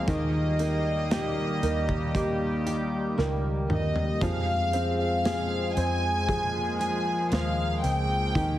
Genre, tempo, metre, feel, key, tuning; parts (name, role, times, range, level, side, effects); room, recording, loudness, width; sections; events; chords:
pop ballad; 58 BPM; 4/4; straight; F minor; A4 = 438 Hz
warm studio violin section; melody; 0.0-8.6 s; Eb5 to Ab5; -30 LUFS; left 1 dB; slapback echo
felt-muted upright piano; accompaniment; 0.0-8.6 s; Eb3 to C5; -34 LUFS; right 2 dB
sweeping resonant pad; sustained chords; 0.0-8.6 s; Eb3 to Ab4; -32 LUFS; equal; chorus
fingerpicked steel-string acoustic guitar; arpeggios; 0.0-8.6 s; F2 to Ab4; -32 LUFS; left 1 dB
vintage muted fingered electric bass; bass; 0.0-8.6 s; Db2 to F2; -31 LUFS; equal
modern studio drum kit; drums; 0.1-8.6 s; hi-hat, kick drum, snare drum, toms; -32 LUFS; equal
light reverb, small room reverb; heavily compressed radio sound, multiband compression; -24 LUFS; side -13 dB against mid
0.0-8.6 A section
drum fill 3.2-4.2
0.1 Eb; 4.2 Fm